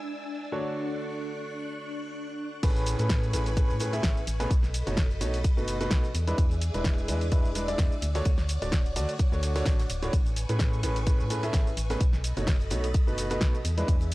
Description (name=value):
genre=piano house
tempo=128 BPM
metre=4/4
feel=swing 55% on 16ths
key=A major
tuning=A4 = 440 Hz
part: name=string machine, violins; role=sustained chords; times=0.0-14.1 s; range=D4 to F#6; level=-38 LUFS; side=equal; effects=ensemble chorus, sidechain pumping
part: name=clear concert grand piano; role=riff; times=0.0-13.9 s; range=A2 to E5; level=-33 LUFS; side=right 1 dB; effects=vintage 12-bit sampler grit, sidechain pumping
part: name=organ-like FM bass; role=bass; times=2.6-14.1 s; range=D1 to A2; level=-30 LUFS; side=equal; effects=sidechain pumping
part: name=electronic kick drum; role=drums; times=2.6-14.0 s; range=none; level=-25 LUFS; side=equal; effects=none
part: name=house drum kit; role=drums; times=2.6-14.1 s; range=crash cymbal, hi-hat, shaker, snare drum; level=-34 LUFS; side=equal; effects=none
part: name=unplugged drum kit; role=drums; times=2.6-14.1 s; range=ride cymbal, snare drum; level=-48 LUFS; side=left 2 dB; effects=none
room=little or no reverb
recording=dry, gritty hardware recording, cassette tape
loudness=-25 LUFS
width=side -19 dB against mid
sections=0.0-2.6 A section; 2.6-14.1 B section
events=drop 2.6-14.1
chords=0.0 E7; 0.5 Dmaj7; 2.6 Amaj9; 4.5 B7; 6.1 E7; 8.0 Dmaj7; 10.1 Amaj9; 12.0 B7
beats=0.29 | 0.76 1.23 1.69 2.16 | 2.63 3.10 3.57 4.04 | 4.51 4.97 5.44 5.91 | 6.38 6.85 7.32 7.79 | 8.26 8.72 9.19 9.66 | 10.13 10.60 11.07 11.54 | 12.01 12.47 12.94 13.41 | 13.88